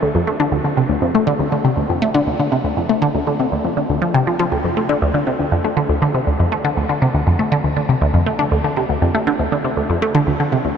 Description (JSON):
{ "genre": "ambient", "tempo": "120 BPM", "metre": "4/4", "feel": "straight", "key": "D minor", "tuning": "A4 = 440 Hz", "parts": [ { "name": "resonant blip pluck", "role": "solo", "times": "0.0-10.7 s", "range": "D2 to A3", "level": "-15 LUFS", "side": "equal", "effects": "phaser, tape echo" } ], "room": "wet huge ambient reverb, RT60 7.9 s", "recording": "dark, warm production", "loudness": "-15 LUFS", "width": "side -7 dB against mid", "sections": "0.0-10.8 A section", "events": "none", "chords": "none" }